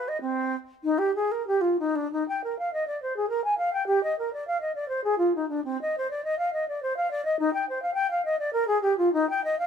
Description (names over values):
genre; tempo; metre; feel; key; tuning
classical, baroque-style fantasia for unaccompanied flute; 91-106 BPM; 3/4; rubato; Eb major; A4 = 440 Hz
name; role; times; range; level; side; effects
mellow concert flute; solo; 0.0-9.7 s; C4 to Ab5; -24 LUFS; equal; none
room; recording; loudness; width
moderate stone room reverb, RT60 1.1 s; none; -24 LUFS; side -7 dB against mid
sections
0.0-2.1 A section; 2.1-9.7 A section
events
none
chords
none